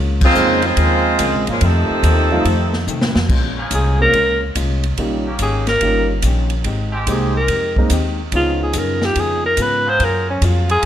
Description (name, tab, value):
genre	jazz, big band swing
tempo	143 BPM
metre	4/4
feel	swing 66% on 8ths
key	Bb minor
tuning	A4 = 440 Hz
part	hollow-body jazz guitar	accompaniment	0.0-10.7 s	F2 to Ab4	-26 LUFS	left 5 dB	none
part	upright bass	bass	0.0-10.9 s	G1 to C3	-19 LUFS	equal	none
part	warm saxophone section	melody	0.2-2.9 s	F3 to C5	-18 LUFS	equal	none
part	bright trombone section	second line	0.2-2.9 s	Bb2 to C4	-20 LUFS	right 3 dB	none
part	swinging big-band drum kit	drums	0.2-10.9 s	crash cymbal, hi-hat, kick drum, ride cymbal, snare drum	-22 LUFS	equal	none
part	warm baby grand piano	accompaniment	0.4-9.5 s	F3 to Bb4	-23 LUFS	right 3 dB	none
part	muted trombone section	sustained chords	3.6-10.9 s	Eb3 to Ab4	-28 LUFS	equal	none
part	clear alto saxophone	melody	3.7-10.9 s	Db4 to C5	-17 LUFS	equal	none
room	light reverb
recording	none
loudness	-14 LUFS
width	side -10 dB against mid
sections	0.0-3.3 A section; 3.3-10.9 B section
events	band accent 0.2; drum fill 2.9-3.3; alto saxophone solo 3.3-10.9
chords	0.0 Db6; 1.6 F7; 3.3 Bbm7; 5.0 Eb7; 6.7 Abmaj7; 8.3 Db7; 10.0 Gbmaj9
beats	0.37 0.79 1.20 | 1.62 2.04 2.46 2.88 | 3.30 3.72 4.14 4.56 | 4.98 5.39 5.81 6.23 | 6.65 7.07 7.49 7.91 | 8.33 8.74 9.16 9.58 | 10.00 10.41 10.83